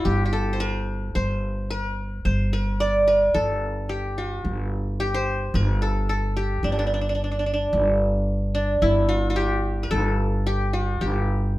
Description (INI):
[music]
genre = Arabic maqam ensemble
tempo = 110 BPM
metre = 4/4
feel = straight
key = G maqam rast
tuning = A4 = 440 Hz
[part]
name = qanun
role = melody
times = 0.0-11.6 s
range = D4 to D5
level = -24 LUFS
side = equal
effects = none
[part]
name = upright bass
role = bass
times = 0.1-11.6 s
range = G1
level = -24 LUFS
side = equal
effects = none
[sound]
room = wet studio reverb, RT60 0.6 s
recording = band playing live in one room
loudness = -21 LUFS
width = side -17 dB against mid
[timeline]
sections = 0.0-11.6 A section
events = none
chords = none